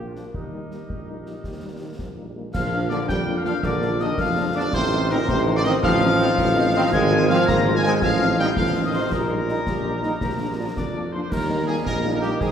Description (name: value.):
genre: military-style march for wind band.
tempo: 109 BPM (dotted quarters).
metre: 6/8.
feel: straight.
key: Bb major, Eb major from 6.9 s.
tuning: A4 = 440 Hz.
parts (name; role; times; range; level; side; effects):
warm trumpet section; melody; 0.0-12.5 s; D4 to Bb5; -28 LUFS; equal; none.
dark woodwind section; second line; 0.0-12.5 s; D4 to Eb5; -33 LUFS; left 1 dB; none.
warm euphonium; second line; 0.0-12.5 s; Bb2 to C4; -27 LUFS; right 1 dB; none.
mellow French horn section; accompaniment; 0.0-12.3 s; F3 to F4; -30 LUFS; left 3 dB; none.
warm tuba; bass; 0.0-12.5 s; Ab1 to F2; -25 LUFS; right 2 dB; none.
concert snare drum, concert bass drum and clash cymbals; drums; 0.2-12.5 s; none; -29 LUFS; equal; none.
glockenspiel with rubber mallets; second line; 2.5-10.7 s; Bb5 to Bb6; -30 LUFS; left 8 dB; none.
wooden piccolo; second line; 2.5-12.5 s; G5 to Bb6; -30 LUFS; left 2 dB; none.
clear trombone section; sustained chords; 2.9-12.5 s; Eb3 to Eb4; -30 LUFS; right 2 dB; none.
room: wet scoring stage reverb, RT60 1.7 s.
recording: heard from further back in the room.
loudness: -19 LUFS.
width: side -8 dB against mid.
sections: 0.0-2.5 A section; 2.5-11.3 B section; 11.3-12.5 A section.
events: none.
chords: 0.3 Eb; 2.5 Bb; 4.7 F7/A; 6.9 Fm/Ab; 8.0 F7/A; 9.1 Eb/Bb; 10.2 Bb; 11.3 Eb.